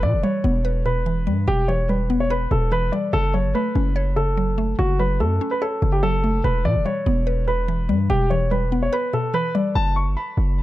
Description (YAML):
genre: hip hop, drill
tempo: 145 BPM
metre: 4/4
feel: half-time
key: unclear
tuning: A4 = 440 Hz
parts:
  - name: dark concert grand piano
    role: melody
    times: 0.0-10.6 s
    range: F#4 to C#6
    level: -24 LUFS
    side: equal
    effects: digital delay
  - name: mallet-like synth pluck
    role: accompaniment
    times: 0.0-9.8 s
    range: B2 to C#5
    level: -25 LUFS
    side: left 1 dB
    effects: chorus, phaser
  - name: hard-hitting 808-style bass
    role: bass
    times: 0.0-10.6 s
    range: E1 to B2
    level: -21 LUFS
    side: equal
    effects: none
room: small room ambience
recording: dark, warm production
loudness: -19 LUFS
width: side -15 dB against mid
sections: 0.0-9.8 A section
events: none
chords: 0.0 Em; 3.1 F#m; 6.4 Em; 9.8 F#m